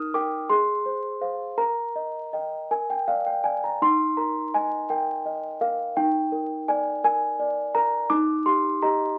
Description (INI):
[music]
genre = classical, lullaby for celesta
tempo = 56 BPM (dotted quarters)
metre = 6/8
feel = rubato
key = Eb major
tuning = A4 = 440 Hz
[part]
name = celesta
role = solo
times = 0.0-9.2 s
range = Eb4 to F6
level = -25 LUFS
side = equal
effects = none
[sound]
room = wet club reverb, RT60 0.5 s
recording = very old 78 rpm record, vinyl crackle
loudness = -25 LUFS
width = mono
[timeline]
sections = 0.0-9.2 A section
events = none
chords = 0.0 Eb; 0.5 Fm/Ab; 1.6 Eb/Bb; 2.7 Bb; 3.8 Eb; 6.0 Bb7/Eb; 8.1 Eb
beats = 0.50 | 1.58 2.69 | 3.81 4.89 | 5.97 7.04 | 8.10